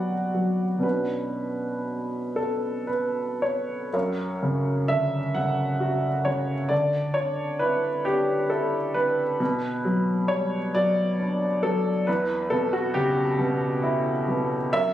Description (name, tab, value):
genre	neoclassical minimalist piano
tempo	37-46 BPM (dotted quarters)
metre	6/8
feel	rubato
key	B minor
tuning	A4 = 439 Hz
part	clear upright piano	solo	0.0-14.9 s	E2 to F#5	-23 LUFS	equal	none
room	light reverb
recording	recorded on a phone in the room, studio reverb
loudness	-23 LUFS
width	side -12 dB against mid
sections	0.0-3.9 A section; 3.9-14.9 A section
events	none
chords	0.0 B5; 0.8 Bmadd9; 3.9 F#5; 6.7 Dsus2; 9.4 Bm; 12.1 E5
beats	| 0.84 2.37 | 3.94 5.36 | 6.72 8.06 | 9.40 10.74 | 12.07 13.39 | 14.74